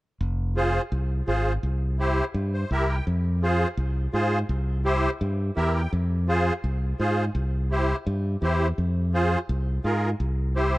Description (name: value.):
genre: latin, cumbia.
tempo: 168 BPM.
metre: 4/4.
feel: straight.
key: F harmonic minor.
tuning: A4 = 441 Hz.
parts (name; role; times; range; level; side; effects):
modern bright fingered electric bass; bass; 0.2-10.8 s; F1 to Ab2; -24 LUFS; equal; none.
musette accordion; accompaniment; 0.6-10.8 s; E4 to G5; -27 LUFS; right 1 dB; none.
room: little or no reverb.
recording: dark, warm production.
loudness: -23 LUFS.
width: side -18 dB against mid.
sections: 0.2-10.8 A section.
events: accordion fill 2.4-3.1, 5.4-5.9.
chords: 0.2 Fm; 1.6 C7; 3.1 Fm; 4.5 C7; 5.9 Fm; 7.4 C; 8.8 Fm; 10.2 C.